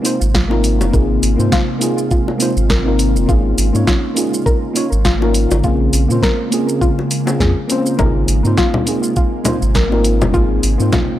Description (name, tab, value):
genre	sunset chillout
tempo	102 BPM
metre	4/4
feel	swing 57% on 16ths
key	Ab major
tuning	A4 = 440 Hz
part	mellow FM electric piano	accompaniment	0.0-11.2 s	Bb3 to Db5	-19 LUFS	moving between left 5 dB and right 2 dB	chorus, auto-pan, analog delay
part	ethereal airy pad	sustained chords	0.0-11.2 s	C3 to G5	-23 LUFS	right 1 dB	ensemble chorus, built-in reverb
part	soft round pluck	arpeggios	0.0-11.2 s	F4 to Bb4	-24 LUFS	left 2 dB	chorus, analog delay
part	deep house drum kit	drums	0.1-11.1 s	congas, hi-hat, shaker, snare drum	-20 LUFS	equal	overdrive
part	round analog bass	bass	0.2-10.9 s	F1 to Bb2	-16 LUFS	equal	tube saturation
part	electronic kick drum	drums	0.3-11.1 s	none	-17 LUFS	equal	none
part	bongos	percussion	0.5-10.3 s	none	-23 LUFS	left 4 dB	none
room	light reverb, digital ambience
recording	dry, gritty hardware recording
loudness	-13 LUFS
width	side -13 dB against mid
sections	0.0-11.2 A section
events	none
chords	0.0 Ab69; 3.3 Db6/Ab; 5.6 Bbm7; 8.0 Ab69